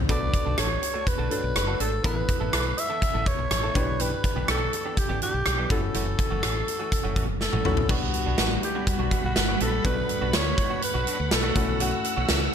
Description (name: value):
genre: 1980s-style pop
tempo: 123 BPM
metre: 4/4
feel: straight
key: unclear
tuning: A4 = 442 Hz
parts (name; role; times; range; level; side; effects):
- warm grand piano; accompaniment; 0.0-12.5 s; G3 to C#5; -35 LUFS; left 6 dB; none
- woody fretless electric bass; bass; 0.0-12.5 s; F#1 to D2; -29 LUFS; equal; analog chorus
- raspy alto saxophone; melody; 0.1-12.3 s; F#4 to E5; -29 LUFS; equal; none
- direct-recorded clean electric guitar; riff; 0.1-12.4 s; E3 to A4; -35 LUFS; right 5 dB; ensemble chorus, digital delay
- big rock drum kit; drums; 0.1-12.4 s; crash cymbal, hi-hat, kick drum, rim click, snare drum, toms; -26 LUFS; equal; gated reverb
- string machine, violas; sustained chords; 7.9-12.5 s; G3 to E6; -31 LUFS; equal; ensemble chorus
room: light reverb, studio reverb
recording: none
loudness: -22 LUFS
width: side -8 dB against mid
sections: 0.0-7.9 A section; 7.9-12.5 B section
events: drum fill 7.4-7.9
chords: 0.1 Bm7; 2.0 Asus2; 3.8 G6/B; 5.7 F#m7; 7.9 Gmaj7; 11.6 F#m7